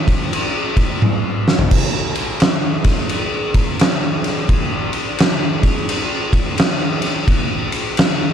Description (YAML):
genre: metal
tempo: 86 BPM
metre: 4/4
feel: swing 64% on 8ths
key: none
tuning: none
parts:
  - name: oversized low-tuned drum kit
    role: drums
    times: 0.1-8.2 s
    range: crash cymbal, kick drum, ride cymbal, snare drum, toms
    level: -15 LUFS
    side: equal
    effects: none
room: little or no reverb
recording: dark, warm production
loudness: -15 LUFS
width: side -8 dB against mid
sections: 0.0-1.7 A section; 1.7-8.3 B section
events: drum fill 1.0-1.7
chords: none